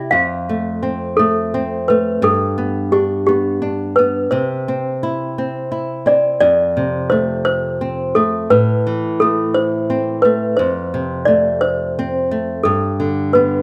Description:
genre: children's music, lullaby.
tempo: 58 BPM (dotted quarters).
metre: 6/8.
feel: straight.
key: unclear.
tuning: A4 = 441 Hz.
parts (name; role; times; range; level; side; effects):
toy piano; melody; 0.0-13.6 s; G4 to F5; -18 LUFS; equal; none.
flamenco guitar; accompaniment; 0.0-13.6 s; F2 to G4; -22 LUFS; equal; none.
room: light reverb.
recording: close, detailed microphones.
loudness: -17 LUFS.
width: mono.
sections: 0.0-6.4 A section; 6.4-13.6 B section.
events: none.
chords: 0.1 F; 2.2 G; 4.3 C; 6.4 F; 8.5 Amadd9; 10.6 F; 12.7 Gadd9.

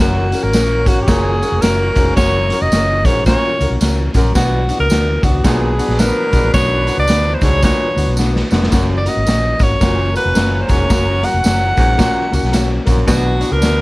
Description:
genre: uptempo 1960s-style soul.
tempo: 110 BPM.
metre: 4/4.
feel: swing 62% on 8ths.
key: F# major.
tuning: A4 = 441 Hz.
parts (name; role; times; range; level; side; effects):
clear alto saxophone; melody; 0.0-13.8 s; F#4 to F#5; -18 LUFS; equal; none.
warm horn section; second line; 0.0-13.8 s; F#3 to C#5; -26 LUFS; right 1 dB; none.
bright upright piano; accompaniment; 0.0-13.8 s; A#3 to A#4; -22 LUFS; left 4 dB; none.
clear baritone saxophone; riff; 0.0-13.3 s; F#2 to B2; -23 LUFS; right 2 dB; none.
vintage muted fingered electric bass; bass; 0.0-13.8 s; E#1 to D2; -18 LUFS; equal; none.
raw garage drum kit; drums; 0.0-13.8 s; hi-hat, kick drum, snare drum; -16 LUFS; equal; none.
tambourine; percussion; 0.3-13.8 s; none; -30 LUFS; right 3 dB; none.
room: light reverb.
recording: vinyl crackle.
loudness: -12 LUFS.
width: side -21 dB against mid.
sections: 0.0-13.8 A section.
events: drum fill 8.2-8.7.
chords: 0.0 F#; 4.4 Bm; 8.7 F#; 13.1 Bm.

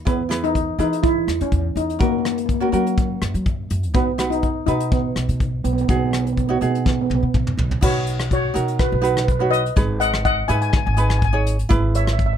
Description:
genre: calypso.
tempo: 124 BPM.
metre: 4/4.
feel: straight.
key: B major.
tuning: A4 = 444 Hz.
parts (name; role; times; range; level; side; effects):
upright bass; bass; 0.0-12.4 s; G#1 to F#3; -23 LUFS; equal; none.
steel pan; melody; 0.1-12.4 s; A#3 to G#5; -22 LUFS; equal; none.
ukulele; accompaniment; 0.1-12.1 s; C#4 to C#5; -25 LUFS; right 4 dB; none.
soft brush drum kit; drums; 0.1-12.3 s; crash cymbal, hi-hat, kick drum, rim click, snare drum, toms; -22 LUFS; left 1 dB; none.
room: light reverb.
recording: close, detailed microphones.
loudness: -17 LUFS.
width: side -9 dB against mid.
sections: 0.0-7.8 A section; 7.8-12.4 B section.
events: drum fill 6.9-7.8.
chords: 0.1 E; 2.0 F#; 3.9 B; 7.8 Badd9; 9.8 G#m; 11.7 E/G#.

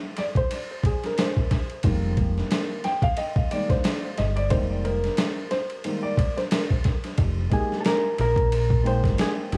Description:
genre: hip hop, jazz-hop.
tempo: 90 BPM.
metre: 4/4.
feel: swing 57% on 16ths.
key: F dorian.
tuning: A4 = 440 Hz.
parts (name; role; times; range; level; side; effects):
dark concert grand piano; accompaniment; 0.2-9.6 s; Eb3 to G5; -31 LUFS; equal; tape echo.
boom bap sampler-style drum kit; drums; 0.2-9.6 s; hi-hat, kick drum, ride cymbal, snare drum; -27 LUFS; equal; tape echo.
deep dub fingered electric bass; bass; 1.8-9.6 s; F1 to Bb1; -27 LUFS; equal; none.
hollow-body jazz guitar; melody; 7.5-9.6 s; Ab4 to C5; -27 LUFS; equal; tape echo.
room: light reverb, digital ambience.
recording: echo-heavy mix, vinyl crackle.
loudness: -24 LUFS.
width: mono.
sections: 0.0-7.2 A section; 7.2-9.6 B section.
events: grand piano solo 0.0-7.2.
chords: 0.0 Fm11; 7.2 Fm11 (rootless).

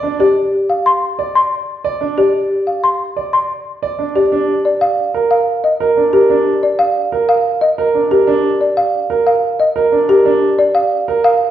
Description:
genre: classical, minimalist pattern music.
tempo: 182 BPM.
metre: 6/4.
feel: straight.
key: Eb major.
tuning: A4 = 440 Hz.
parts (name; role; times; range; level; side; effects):
warm grand piano; arpeggios; 0.0-11.3 s; D4 to D5; -16 LUFS; right 4 dB; none.
folk marimba with medium mallets; melody; 0.2-11.5 s; G4 to C6; -13 LUFS; left 1 dB; none.
room: wet recital hall reverb, RT60 1.5 s.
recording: heard from further back in the room.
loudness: -12 LUFS.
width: side -11 dB against mid.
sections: 0.0-11.5 A section.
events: none.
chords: 0.0 N.C.; 4.3 Ebsus2 (rootless).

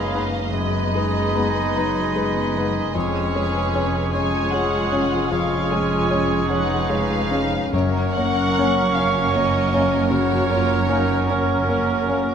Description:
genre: classical.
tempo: 50 BPM (dotted quarters).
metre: 12/8.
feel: rubato.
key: F# major.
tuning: A4 = 440 Hz.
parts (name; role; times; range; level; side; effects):
clear grand piano; melody; 0.0-12.3 s; E#2 to C#5; -24 LUFS; left 2 dB; none.
dark studio violin section; melody; 0.0-12.1 s; B4 to G#5; -29 LUFS; left 2 dB; none.
clear clarinet; second line; 0.0-12.3 s; C#4 to D#4; -31 LUFS; left 2 dB; none.
rich chamber violin section; second line; 0.0-12.3 s; G#4 to D#5; -30 LUFS; left 2 dB; none.
silver concert flute; second line; 0.0-12.3 s; B5 to C#6; -28 LUFS; right 4 dB; none.
warm oboe; second line; 0.0-12.3 s; G#4 to A#4; -30 LUFS; right 3 dB; none.
warm bassoon; accompaniment; 0.0-12.3 s; F#3 to G#3; -30 LUFS; right 3 dB; none.
warm chamber viola section; accompaniment; 0.0-12.3 s; F#3 to F#4; -28 LUFS; equal; none.
warm chamber cello section; bass; 0.0-12.3 s; E#2 to F#2; -28 LUFS; right 3 dB; none.
warm studio double bass section; bass; 0.0-12.3 s; E#1 to F#1; -28 LUFS; right 2 dB; none.
mellow French horn section; sustained chords; 0.1-12.2 s; G#3 to C#4; -31 LUFS; left 5 dB; none.
timpani; percussion; 7.7-8.9 s; F#2; -29 LUFS; left 2 dB; none.
room: light reverb.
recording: close, detailed microphones.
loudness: -18 LUFS.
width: side -7 dB against mid.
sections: 0.0-12.3 A section.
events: none.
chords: 0.0 G#m7/F#; 2.9 C#7/E#; 7.7 F#.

